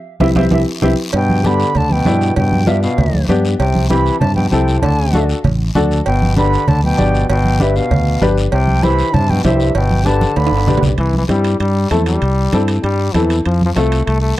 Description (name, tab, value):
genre	latin, cumbia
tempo	195 BPM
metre	4/4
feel	straight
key	C major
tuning	A4 = 440 Hz
part	reedy silver concert flute	melody	0.2-10.8 s	E5 to B5	-21 LUFS	right 3 dB	analog delay
part	clear upright piano	accompaniment	0.2-14.0 s	B3 to D5	-18 LUFS	left 3 dB	none
part	fingered electric bass	bass	0.2-14.3 s	G1 to G2	-16 LUFS	equal	none
part	congas	percussion	0.2-14.2 s	none	-18 LUFS	right 1 dB	none
part	guiro	percussion	0.2-14.4 s	none	-32 LUFS	left 5 dB	none
part	timbales and cowbell	percussion	0.2-14.2 s	none	-25 LUFS	right 7 dB	none
part	bright trombone	second line	1.1-14.4 s	G2 to A3	-20 LUFS	left 3 dB	none
room	moderate studio reverb, RT60 0.5 s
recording	dark, warm production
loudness	-12 LUFS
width	side -15 dB against mid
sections	0.0-1.1 A section; 1.1-11.0 B section; 11.0-14.4 C section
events	band accent 0.0-1.1; upright piano fill 0.2-1.1; drum fill 10.1-11.0; trombone solo 11.0-14.4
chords	0.0 C; 1.1 G; 3.6 C; 4.8 D; 6.1 G; 8.5 C; 9.8 G; 11.0 C; 13.5 F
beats	0.20 0.51 0.82 | 1.13 1.44 1.75 2.06 | 2.36 2.67 2.98 3.29 | 3.60 3.91 4.21 4.52 | 4.83 5.14 5.45 5.75 | 6.06 6.37 6.68 6.99 | 7.29 7.60 7.91 8.22 | 8.52 8.83 9.14 9.45 | 9.76 10.06 10.37 10.68 | 10.99 11.29 11.60 11.91 | 12.22 12.53 12.84 13.15 | 13.46 13.77 14.07 14.38